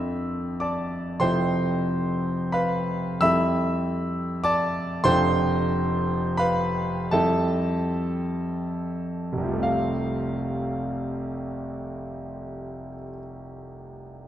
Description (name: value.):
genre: classical, impressionist solo piano.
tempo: 22-34 BPM (dotted quarters).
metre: 6/8.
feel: rubato.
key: F lydian.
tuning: A4 = 441 Hz.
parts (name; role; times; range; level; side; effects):
clear concert grand piano; solo; 0.0-14.3 s; F1 to E6; -24 LUFS; equal; none.
room: moderate scoring stage reverb, RT60 1.4 s.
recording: dark, warm production, faint mains hum.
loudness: -23 LUFS.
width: side -11 dB against mid.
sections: 0.0-9.6 A section; 9.6-14.2 B section.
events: slowing down 0.0-9.6.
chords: 0.0 F6; 1.2 Fmaj7; 3.2 Am7/F; 5.1 F6; 7.1 Am7/F; 9.6 Fadd9.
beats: | 1.21 3.23 | 5.06 7.13 | 9.65 11.93.